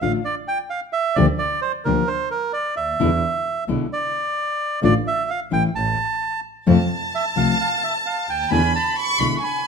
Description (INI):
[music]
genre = tango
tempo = 131 BPM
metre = 4/4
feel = rubato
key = unclear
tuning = A4 = 444 Hz
[part]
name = bandoneon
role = melody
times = 0.0-9.7 s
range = Bb4 to C#6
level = -22 LUFS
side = right 4 dB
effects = none
[part]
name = nylon-string guitar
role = accompaniment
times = 0.0-9.4 s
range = B2 to G4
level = -21 LUFS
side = left 7 dB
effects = none
[part]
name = warm double bass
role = bass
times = 0.0-9.4 s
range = A1 to F2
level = -23 LUFS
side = right 3 dB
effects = none
[part]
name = warm chamber violin section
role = second line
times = 6.7-9.7 s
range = G#5 to C#6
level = -22 LUFS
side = left 1 dB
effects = none
[sound]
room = moderate large studio reverb, RT60 1.2 s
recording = minimal, uncompressed stereo recording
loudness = -19 LUFS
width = side -6 dB against mid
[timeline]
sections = 0.0-9.7 A section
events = none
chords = 0.0 Dm; 1.2 Gm7/D; 3.0 E7; 4.8 D5/A; 5.7 N.C.; 6.7 F; 8.5 E7